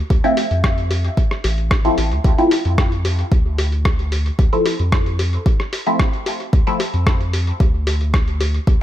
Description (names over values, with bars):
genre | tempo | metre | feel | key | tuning
dub techno | 112 BPM | 4/4 | straight | D minor | A4 = 440 Hz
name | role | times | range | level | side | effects
soft dub sub bass | bass | 0.0-8.8 s | A1 to F2 | -19 LUFS | equal | sidechain pumping
electronic kick drum | drums | 0.1-8.8 s | none | -16 LUFS | equal | none
lo-fi sampler-style drum kit | drums | 0.1-8.8 s | hi-hat, rim click | -26 LUFS | equal | dub echo
bongos and cowbell | percussion | 0.1-8.8 s | none | -29 LUFS | left 2 dB | overdrive, sidechain pumping on perc, dub echo
filtered dub chord stab | stabs | 0.2-6.8 s | F3 to E4 | -20 LUFS | left 1 dB | phaser, sidechain pumping, dub echo
room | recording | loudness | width
light reverb | none | -15 LUFS | side -12 dB against mid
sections
0.0-8.8 A section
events
none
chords
0.0 Dm9